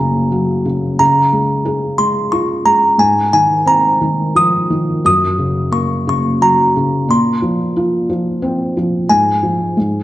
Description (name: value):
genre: children's music, lullaby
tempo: 89 BPM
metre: 3/4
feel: rubato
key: Db major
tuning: A4 = 440 Hz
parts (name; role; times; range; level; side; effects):
- music box; melody; 0.0-10.0 s; Ab5 to Eb6; -14 LUFS; equal; none
- felt-muted upright piano; accompaniment; 0.0-10.0 s; Gb2 to Ab4; -16 LUFS; equal; none
room: wet recital hall reverb, RT60 1.4 s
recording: worn, warbling old tape, cassette tape, warbly pitch drift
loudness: -12 LUFS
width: side -15 dB against mid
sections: 0.0-10.0 A section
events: none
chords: 0.0 Gb; 1.0 Db; 3.0 Ab6; 5.0 Gb; 7.1 Bbsus2; 9.1 Fm/Ab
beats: 0.32 | 0.99 1.66 2.32 | 2.99 3.67 4.36 | 5.05 5.73 6.42 | 7.10 7.77 8.43 | 9.10 9.77